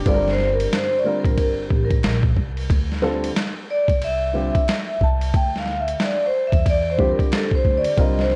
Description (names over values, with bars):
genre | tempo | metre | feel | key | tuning
hip hop, jazz-hop | 91 BPM | 4/4 | swing 62% on 16ths | D minor | A4 = 440 Hz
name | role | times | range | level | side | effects
dark upright piano | accompaniment | 0.0-8.4 s | D3 to Bb4 | -28 LUFS | equal | none
upright bass | bass | 0.0-8.4 s | G1 to E2 | -27 LUFS | equal | none
vibraphone with soft mallets | melody | 0.1-8.3 s | G4 to A5 | -24 LUFS | equal | tape echo
boom bap sampler-style drum kit | drums | 0.1-8.4 s | hi-hat, kick drum, ride cymbal, snare drum | -24 LUFS | equal | none
room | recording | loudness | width
light reverb, studio reverb | worn, warbling old tape, cassette tape, warbly pitch drift | -20 LUFS | mono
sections
0.0-8.4 A section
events
vibraphone solo 0.0-8.4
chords
0.1 Gm9; 2.7 Dm9